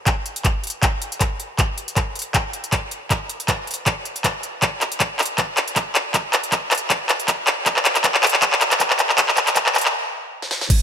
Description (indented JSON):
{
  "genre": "future bass",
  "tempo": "158 BPM",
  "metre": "4/4",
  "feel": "swing 55% on 16ths, half-time",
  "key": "none",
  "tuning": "none",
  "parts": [
    { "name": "electronic kick drum", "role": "drums", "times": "0.1-10.8 s", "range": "none", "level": "-22 LUFS", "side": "equal", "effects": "small room ambience" },
    { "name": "pop drum kit", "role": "drums", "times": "0.1-10.8 s", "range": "crash cymbal, handclaps, hi-hat, snare drum", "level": "-18 LUFS", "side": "equal", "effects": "high-pass filter on snare, small room ambience, high-pass filter on hats, high-pass filter on cymbals" }
  ],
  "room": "moderate lush hall reverb, RT60 2.0 s",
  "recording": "high-pass filter",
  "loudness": "-18 LUFS",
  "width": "side -8 dB against mid",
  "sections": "0.0-10.7 A section",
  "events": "build-up 0.0-10.7; drum fill 0.0-9.9, 10.4; filter sweep 0.0-10.7; stop 9.9-10.7",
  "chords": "none"
}